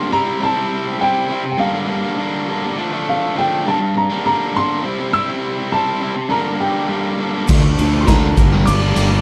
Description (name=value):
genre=indie rock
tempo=102 BPM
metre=4/4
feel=straight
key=unclear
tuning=A4 = 440 Hz
part: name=dark upright piano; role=melody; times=0.0-9.2 s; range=F5 to E6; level=-22 LUFS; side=equal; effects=tape echo
part: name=raw garage guitar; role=riff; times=0.0-9.2 s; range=G2 to E4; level=-22 LUFS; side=equal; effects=overdrive
part: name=brilliant trumpet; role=second line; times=6.3-9.2 s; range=G4 to D5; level=-33 LUFS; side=equal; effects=tape echo
part: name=crunchy overdriven guitar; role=riff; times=7.5-9.1 s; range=D3 to G4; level=-25 LUFS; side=equal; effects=subtle chorus
part: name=fuzz fingered electric bass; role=bass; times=7.5-9.2 s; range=G1 to D2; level=-18 LUFS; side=equal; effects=overdrive
part: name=raw garage drum kit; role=drums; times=7.5-9.1 s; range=crash cymbal, kick drum, ride cymbal, snare drum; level=-18 LUFS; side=equal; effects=none
part: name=tube shaker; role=percussion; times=7.5-9.1 s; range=none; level=-38 LUFS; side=equal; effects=none
room=studio ambience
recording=dark, warm production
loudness=-18 LUFS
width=mono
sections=0.0-9.2 A section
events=none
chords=0.1 C; 1.6 Gm; 2.8 Dm; 3.7 Gm; 4.8 C; 6.3 Gm; 7.5 Dm; 8.4 Gm